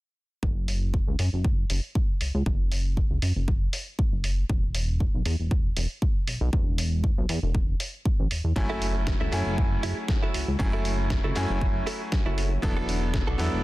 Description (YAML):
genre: nu-disco, nu disco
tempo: 118 BPM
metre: 4/4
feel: swing 54% on 16ths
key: F# minor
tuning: A4 = 438 Hz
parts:
  - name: chorused synth bass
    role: bass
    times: 0.4-13.6 s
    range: E1 to F#2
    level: -27 LUFS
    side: equal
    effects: sidechain pumping
  - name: electronic kick drum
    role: drums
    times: 0.4-13.2 s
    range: none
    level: -26 LUFS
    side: equal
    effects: small room ambience
  - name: dusty soul sampler-style drum kit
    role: drums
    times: 0.7-13.5 s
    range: hi-hat, snare drum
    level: -34 LUFS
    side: equal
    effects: small room ambience
  - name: bright electric grand piano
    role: accompaniment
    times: 8.6-13.6 s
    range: F#3 to G#5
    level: -30 LUFS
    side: equal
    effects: sidechain pumping, dub echo
  - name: direct-recorded clean electric guitar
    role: riff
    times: 8.7-13.6 s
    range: D4 to A4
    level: -34 LUFS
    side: right 3 dB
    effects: analog chorus, dub echo
room: little or no reverb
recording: dense, heavily limited modern master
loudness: -24 LUFS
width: side -18 dB against mid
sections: 0.4-13.6 A section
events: filter sweep on analog synth bass 0.4-13.6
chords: 0.4 F#5; 4.5 N.C.; 8.6 F#m7; 12.6 E9sus4